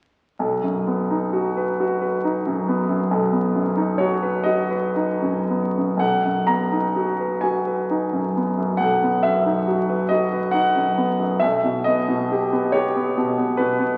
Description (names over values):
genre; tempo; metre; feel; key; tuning
classical, romantic nocturne for solo piano; 36-47 BPM (dotted quarters); 12/8; rubato; B major; A4 = 444 Hz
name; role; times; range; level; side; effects
warm grand piano; solo; 0.4-14.0 s; B1 to A#5; -21 LUFS; equal; none
room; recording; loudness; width
wet recital hall reverb, RT60 1.6 s; very old 78 rpm record, vinyl crackle; -21 LUFS; mono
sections
0.4-6.0 A section; 6.0-14.0 B section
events
none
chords
0.4 B; 11.4 Baug